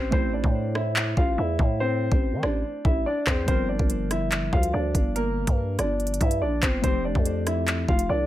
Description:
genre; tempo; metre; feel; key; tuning
hip hop, drill; 143 BPM; 4/4; half-time; A phrygian; A4 = 438 Hz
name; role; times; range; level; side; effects
warm concert grand piano; melody; 0.0-8.3 s; Bb3 to F5; -27 LUFS; equal; low-pass filter, digital delay
warbly lo-fi synth keys; accompaniment; 0.0-8.3 s; F3 to C5; -34 LUFS; left 1 dB; chorus, low-pass filter
growling 808-style bass; bass; 0.0-8.3 s; F1 to E3; -27 LUFS; equal; none
drill drum kit; drums; 0.1-8.1 s; handclaps, hi-hat, kick drum, rim click; -24 LUFS; equal; none
room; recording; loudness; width
digital ambience; none; -22 LUFS; side -14 dB against mid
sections
0.0-8.3 A section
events
break 0.0-3.5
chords
0.0 Am; 3.5 Gm7; 6.8 Fadd9

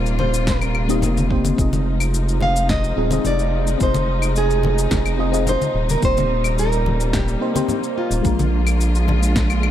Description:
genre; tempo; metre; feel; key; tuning
sunset chillout; 108 BPM; 4/4; straight; F dorian; A4 = 441 Hz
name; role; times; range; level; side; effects
nylon-string guitar; melody; 0.0-9.0 s; F4 to F5; -24 LUFS; right 2 dB; tape echo
mellow FM electric piano; accompaniment; 0.0-9.7 s; Ab3 to Eb5; -25 LUFS; moving between left 2 dB and right 5 dB; chorus, phaser, auto-pan, tape echo
warm studio string section; sustained chords; 0.0-9.7 s; C3 to F4; -28 LUFS; left 2 dB; none
round analog bass; bass; 0.0-9.7 s; Eb1 to Bb1; -20 LUFS; equal; none
electronic shaker, snare drum and claves; drums; 0.1-9.7 s; none; -27 LUFS; left 2 dB; overdrive
congas; percussion; 0.2-9.5 s; none; -26 LUFS; left 3 dB; none
electronic kick drum; drums; 0.5-9.5 s; none; -23 LUFS; equal; overdrive
room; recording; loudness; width
studio ambience; none; -16 LUFS; side -11 dB against mid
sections
0.0-9.7 A section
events
none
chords
0.0 Eb6; 1.6 Fm7; 5.7 Eb6; 8.2 Bb7

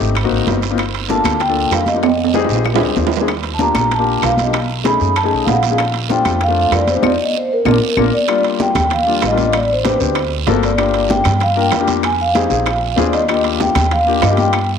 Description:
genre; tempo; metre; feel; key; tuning
Afro-Cuban jazz; 192 BPM; 4/4; straight; Bb major, Eb major from 8.3 s; A4 = 440 Hz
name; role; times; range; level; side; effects
warm grand piano; accompaniment; 0.0-14.5 s; G3 to Bb4; -19 LUFS; left 11 dB; none
upright bass; bass; 0.0-14.8 s; G1 to G2; -20 LUFS; right 1 dB; none
bongos; percussion; 0.0-14.8 s; none; -29 LUFS; left 12 dB; none
congas; percussion; 0.0-14.8 s; none; -24 LUFS; right 1 dB; none
guiro; percussion; 0.0-14.8 s; none; -28 LUFS; right 15 dB; none
claves; percussion; 0.2-14.7 s; none; -28 LUFS; left 13 dB; none
timbales; percussion; 0.2-14.7 s; none; -22 LUFS; right 13 dB; none
vibraphone with soft mallets; melody; 1.1-14.7 s; Bb4 to B5; -17 LUFS; right 1 dB; slapback echo
room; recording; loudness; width
moderate plate reverb, RT60 3.0 s; 1960s-style stereo with parts hard left and right; -13 LUFS; side -7 dB against mid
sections
0.0-8.3 A section; 8.3-14.8 B section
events
drum fill 2.0-3.3, 7.5-8.3; band accent 7.0-8.3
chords
0.2 Ab9; 0.8 Gm7; 2.0 Fm9; 2.7 Bb9; 3.3 Ebmaj9; 4.5 B13; 5.8 Bbmaj9; 7.0 F5; 7.7 Bb; 8.3 Ebmaj9; 9.5 Am11; 10.2 D7b13; 10.8 Gm7; 12.0 Fm9; 12.7 Bb7; 13.3 Ebmaj9

